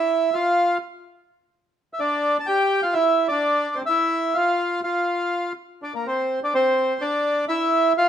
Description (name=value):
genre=tango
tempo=126 BPM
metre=4/4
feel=rubato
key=unclear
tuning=A4 = 439 Hz
part: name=bandoneon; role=solo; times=0.0-8.1 s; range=Bb3 to A5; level=-19 LUFS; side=equal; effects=none
room=wet large studio reverb, RT60 1.1 s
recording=minimal, uncompressed stereo recording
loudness=-19 LUFS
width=side -9 dB against mid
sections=0.0-6.3 A section; 6.3-8.1 A section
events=none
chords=0.0 N.C.; 0.6 Dm; 2.5 Dsus24; 3.4 C; 4.4 F5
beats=0.08 | 0.56 1.04 1.52 1.99 | 2.47 2.95 3.42 3.90 | 4.37 4.85 5.33 5.81 | 6.29 6.77 7.24 7.72